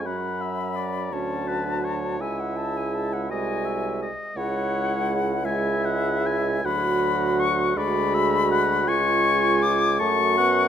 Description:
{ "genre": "classical, slow romantic movement for wind quintet", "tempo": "49-57 BPM (dotted quarters)", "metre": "6/8", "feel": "rubato", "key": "F# minor", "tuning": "A4 = 438 Hz", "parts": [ { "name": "concert flute", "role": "melody", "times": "0.0-10.7 s", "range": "E5 to D6", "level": "-25 LUFS", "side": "left 7 dB", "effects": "none" }, { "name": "warm oboe", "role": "second line", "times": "0.0-10.7 s", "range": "B4 to A5", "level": "-29 LUFS", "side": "left 1 dB", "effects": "none" }, { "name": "mellow French horn", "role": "accompaniment", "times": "0.0-10.7 s", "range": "F#3 to B3", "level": "-29 LUFS", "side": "right 2 dB", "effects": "none" }, { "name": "warm clarinet", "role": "accompaniment", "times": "0.0-10.7 s", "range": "C#4 to F#4", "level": "-32 LUFS", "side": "right 11 dB", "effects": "none" }, { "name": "warm bassoon", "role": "bass", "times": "0.0-10.7 s", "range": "B#1 to F#2", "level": "-27 LUFS", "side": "right 2 dB", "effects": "none" } ], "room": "light reverb", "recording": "close, detailed microphones", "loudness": "-21 LUFS", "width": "side -9 dB against mid", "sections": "0.0-10.7 A section", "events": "none", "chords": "0.1 F#m; 2.2 C#m; 3.3 G#7/B#; 4.4 C#m; 6.6 Bm/D; 7.8 G#m7b5/D; 8.9 C#; 10.0 F#m", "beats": "| 0.06 1.13 | 2.20 3.31 | 4.36 5.45 | 6.65 7.77 | 8.88 10.00" }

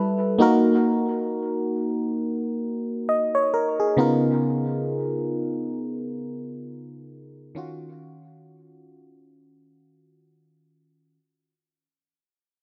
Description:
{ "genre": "R&B", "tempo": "free time", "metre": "none", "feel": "none", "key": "unclear", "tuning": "A4 = 440 Hz", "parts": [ { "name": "FM electric piano", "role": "solo", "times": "0.0-11.2 s", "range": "C#3 to D#5", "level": "-24 LUFS", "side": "equal", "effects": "chorus, tape echo" } ], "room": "moderate echo chamber reverb, RT60 1.6 s, digital ambience", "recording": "echo-heavy mix", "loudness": "-24 LUFS", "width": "mono", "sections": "0.0-11.1 A section", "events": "fade-out 0.0-11.1", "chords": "0.4 F#6/A#; 4.0 C#13; 7.6 D#m9", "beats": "free time" }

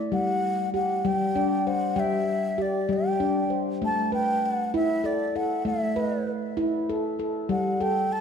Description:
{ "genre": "world meditative, meditative tuned percussion", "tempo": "65 BPM (dotted quarters)", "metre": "6/8", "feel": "straight", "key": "A dorian", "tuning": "A4 = 435 Hz", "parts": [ { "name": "handpan", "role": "arpeggios", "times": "0.0-8.2 s", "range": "G3 to G5", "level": "-26 LUFS", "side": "left 1 dB", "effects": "ping-pong delay" }, { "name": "mellow baroque flute", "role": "melody", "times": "0.1-8.2 s", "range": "D5 to A5", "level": "-27 LUFS", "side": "equal", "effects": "ping-pong delay" } ], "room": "wet concert hall reverb, RT60 1.8 s, studio ambience", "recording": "none", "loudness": "-23 LUFS", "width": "side -7 dB against mid", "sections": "0.0-3.8 A section; 3.8-8.2 B section", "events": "none", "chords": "0.1 G5; 3.8 A5; 7.5 N.C.", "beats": "| 0.11 1.03 | 1.96 2.88 | 3.81 4.73 | 5.65 6.57 | 7.49" }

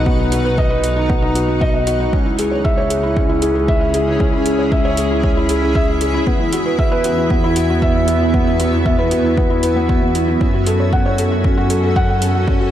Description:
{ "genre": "piano and strings electronica", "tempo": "116 BPM", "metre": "4/4", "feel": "straight", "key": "C# minor", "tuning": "A4 = 441 Hz", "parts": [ { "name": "granular cloud pad", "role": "sustained chords", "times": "0.0-12.7 s", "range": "B3 to F#5", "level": "-22 LUFS", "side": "right 1 dB", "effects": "built-in reverb, sidechain pumping" }, { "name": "felt-muted upright piano", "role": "riff", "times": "0.0-12.7 s", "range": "B3 to F#5", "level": "-17 LUFS", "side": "equal", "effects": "tape echo" }, { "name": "rich studio double bass section", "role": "bass", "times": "0.0-12.7 s", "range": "B1 to F#2", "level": "-20 LUFS", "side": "equal", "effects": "sidechain pumping" }, { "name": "electronic kick drum", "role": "drums", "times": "0.1-12.6 s", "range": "none", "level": "-18 LUFS", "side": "equal", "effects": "overdrive, small room reverb" }, { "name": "electronic hi-hat", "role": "drums", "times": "0.3-12.3 s", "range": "none", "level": "-26 LUFS", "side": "right 1 dB", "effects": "overdrive, small room reverb" } ], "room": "light reverb, studio reverb", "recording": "none", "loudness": "-14 LUFS", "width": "side -11 dB against mid", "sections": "0.0-12.7 A section", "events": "none", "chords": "0.0 B; 2.1 C#m; 6.3 Esus2; 10.4 F#m", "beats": "| 0.06 0.58 1.10 1.61 | 2.13 2.65 3.17 3.68 | 4.20 4.72 5.24 5.75 | 6.27 6.79 7.30 7.82 | 8.34 8.86 9.37 9.89 | 10.41 10.92 11.44 11.96 | 12.48" }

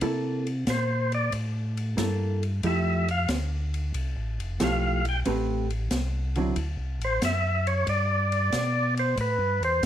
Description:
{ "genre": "soul jazz organ trio", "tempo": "92 BPM", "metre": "4/4", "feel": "swing 69% on 8ths", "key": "unclear", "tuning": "A4 = 439 Hz", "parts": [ { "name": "vintage hollow-body jazz guitar", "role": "accompaniment", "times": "0.0-6.6 s", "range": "D3 to B4", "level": "-28 LUFS", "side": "right 2 dB", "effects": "none" }, { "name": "mellow tonewheel organ", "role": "bass", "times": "0.0-9.9 s", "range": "F1 to C3", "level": "-28 LUFS", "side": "equal", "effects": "slow rotary speaker" }, { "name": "open jazz drum kit", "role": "drums", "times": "0.0-9.9 s", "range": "hi-hat, kick drum, ride cymbal, snare drum", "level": "-35 LUFS", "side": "equal", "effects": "none" }, { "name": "percussive tonewheel organ", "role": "melody", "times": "0.7-9.8 s", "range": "B4 to G5", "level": "-26 LUFS", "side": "equal", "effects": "slow rotary speaker" } ], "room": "light reverb", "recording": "dark, warm production", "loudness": "-24 LUFS", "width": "side -10 dB against mid", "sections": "0.0-9.9 A section", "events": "tonewheel organ solo 0.0-9.9", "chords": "0.0 C6; 2.6 Fmaj9; 5.3 Am9; 6.6 D7; 7.9 G69", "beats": "| 0.02 0.67 1.33 1.98 | 2.64 3.29 3.95 4.60 | 5.25 5.91 6.56 7.22 | 7.87 8.53 9.18 9.83" }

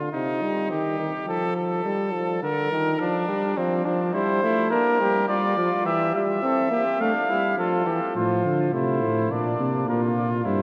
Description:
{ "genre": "classical, imitative canzona for brass ensemble", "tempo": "105 BPM", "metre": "4/4", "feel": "straight", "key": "unclear", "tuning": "A4 = 445 Hz", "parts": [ { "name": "clear trumpet", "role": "second line", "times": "0.0-10.6 s", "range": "C4 to Bb4", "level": "-30 LUFS", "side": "equal", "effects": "none" }, { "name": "clear trombone", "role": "accompaniment", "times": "0.0-10.6 s", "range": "C3 to C4", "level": "-28 LUFS", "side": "equal", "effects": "none" }, { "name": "warm cornet", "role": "melody", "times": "4.1-10.6 s", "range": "A4 to F5", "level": "-27 LUFS", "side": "equal", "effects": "none" }, { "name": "dark bass trombone", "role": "bass", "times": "8.2-10.6 s", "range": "G2 to D3", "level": "-28 LUFS", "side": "equal", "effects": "none" } ], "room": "wet cathedral reverb, RT60 5.2 s", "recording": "none", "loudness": "-24 LUFS", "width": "mono", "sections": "0.0-8.2 A section; 8.2-10.6 B section", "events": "none", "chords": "0.1 Cm; 1.3 F; 2.4 Bb/D; 3.6 F; 4.7 Gm; 5.9 C/E; 7.0 F; 8.2 F/A; 9.3 Bb", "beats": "0.13 0.70 | 1.28 1.85 2.43 3.00 | 3.57 4.14 4.71 5.29 | 5.86 6.43 7.00 7.58 | 8.15 8.73 9.31 9.88 | 10.46" }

